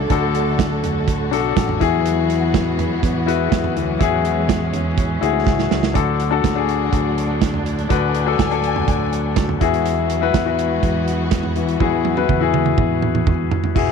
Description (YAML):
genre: piano-driven pop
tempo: 123 BPM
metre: 4/4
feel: straight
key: E mixolydian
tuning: A4 = 440 Hz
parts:
  - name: clear concert grand piano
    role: accompaniment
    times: 0.0-13.9 s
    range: D3 to B4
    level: -20 LUFS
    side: left 12 dB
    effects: none
  - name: warm symphonic string section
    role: sustained chords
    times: 0.0-13.7 s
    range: A2 to G#5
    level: -26 LUFS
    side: right 1 dB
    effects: none
  - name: fingered electric bass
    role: bass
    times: 0.0-13.9 s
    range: E1 to E2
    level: -23 LUFS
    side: right 2 dB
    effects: none
  - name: modern studio drum kit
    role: drums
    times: 0.1-13.9 s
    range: crash cymbal, hi-hat, kick drum, snare drum, toms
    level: -21 LUFS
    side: right 5 dB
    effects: none
room: light reverb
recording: 1960s-style stereo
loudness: -16 LUFS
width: side -6 dB against mid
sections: 0.0-6.0 A section; 6.0-13.8 B section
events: drum fill 5.5-6.0, 11.8-13.8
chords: 0.0 D; 1.8 Eadd9; 6.0 D; 9.6 Eadd9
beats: | 0.10 0.59 1.08 1.57 | 2.05 2.54 3.03 3.52 | 4.00 4.49 4.98 5.47 | 5.95 6.44 6.93 7.42 | 7.90 8.39 8.88 9.37 | 9.86 10.34 10.83 11.32 | 11.80 12.29 12.78 13.27 | 13.76